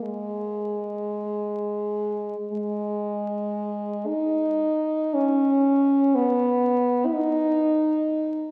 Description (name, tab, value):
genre	classical, free, expressive piece for unaccompanied French horn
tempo	free time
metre	none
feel	none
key	G# minor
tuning	A4 = 438 Hz
part	warm French horn	solo	0.0-8.5 s	G#3 to E4	-24 LUFS	equal	none
room	wet concert hall reverb, RT60 2.2 s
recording	very old 78 rpm record, vinyl crackle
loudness	-24 LUFS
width	mono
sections	0.0-4.1 A section; 4.1-8.5 B section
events	none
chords	none